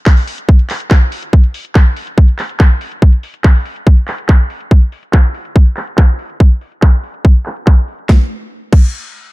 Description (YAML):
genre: trance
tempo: 142 BPM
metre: 4/4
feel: straight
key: none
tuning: none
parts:
  - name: drum and bass drum kit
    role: drums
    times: 0.1-8.8 s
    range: crash cymbal, handclaps, hi-hat, snare drum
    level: -23 LUFS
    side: equal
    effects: overdrive, low-pass filter on hats, low-pass filter on snare, low-pass filter on cymbals
  - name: electronic kick drum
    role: drums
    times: 0.1-8.8 s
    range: none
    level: -7 LUFS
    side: equal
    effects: overdrive
room: digital ambience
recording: dark, warm production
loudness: -9 LUFS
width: side -21 dB against mid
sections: 0.0-8.1 A section; 8.1-9.3 B section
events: filter sweep on drum 0.0-8.1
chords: none